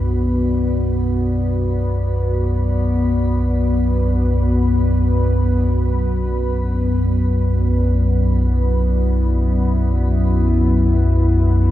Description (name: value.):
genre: dark ambient drone.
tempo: free time.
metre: none.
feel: none.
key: B minor.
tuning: A4 = 439 Hz.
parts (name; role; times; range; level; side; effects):
deep dark ambient pad; sustained chords; 0.0-11.7 s; B3 to F#5; -21 LUFS; equal; chorus, built-in reverb, shimmer reverb.
deep rumbling drone; drone; 0.0-11.7 s; B1 to F#2; -16 LUFS; equal; built-in reverb, wide subtle chorus.
room: light reverb.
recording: small room ambience.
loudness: -15 LUFS.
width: side -13 dB against mid.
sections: 0.0-11.7 A section.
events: none.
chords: 0.0 Bm; 7.2 Esus2/B.